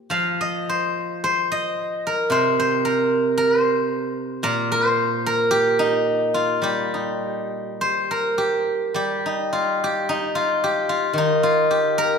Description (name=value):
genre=chinese traditional, Chinese solo plucked strings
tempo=50-57 BPM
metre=2/4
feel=rubato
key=G jue mode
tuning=A4 = 440 Hz
part: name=steel-string zither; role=solo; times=0.1-12.2 s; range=Bb2 to F5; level=-19 LUFS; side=equal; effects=none
room=moderate concert hall reverb, RT60 1.9 s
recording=recorded in a church or concert hall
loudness=-19 LUFS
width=side -6 dB against mid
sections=0.0-9.0 A section; 9.0-12.2 B section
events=none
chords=none